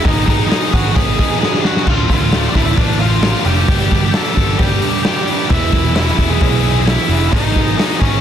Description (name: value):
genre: quiet-loud alternative rock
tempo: 132 BPM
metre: 4/4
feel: straight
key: unclear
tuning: A4 = 439 Hz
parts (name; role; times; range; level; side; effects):
- octave-fuzz lead guitar; melody; 0.0-8.2 s; C#4 to A5; -21 LUFS; equal; distortion, slapback echo
- rich chamber string section; sustained chords; 0.0-8.2 s; F4 to E6; -30 LUFS; left 2 dB; none
- scooped high-gain guitar; riff; 0.0-8.2 s; D2 to G#4; -20 LUFS; left 14 dB; distortion
- thick fuzz guitar; riff; 0.0-8.2 s; D2 to G#4; -21 LUFS; right 15 dB; distortion
- picked electric bass; bass; 0.0-8.2 s; D1 to B1; -17 LUFS; equal; none
- raw garage drum kit; drums; 0.1-8.1 s; crash cymbal, hi-hat, kick drum, snare drum; -16 LUFS; equal; none
room: small room reverb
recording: dense, heavily limited modern master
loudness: -12 LUFS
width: side -9 dB against mid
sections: 0.0-8.2 A section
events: drum fill 1.4-1.9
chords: 0.0 G#m; 1.9 Dm; 3.7 G; 5.5 E; 7.3 G#m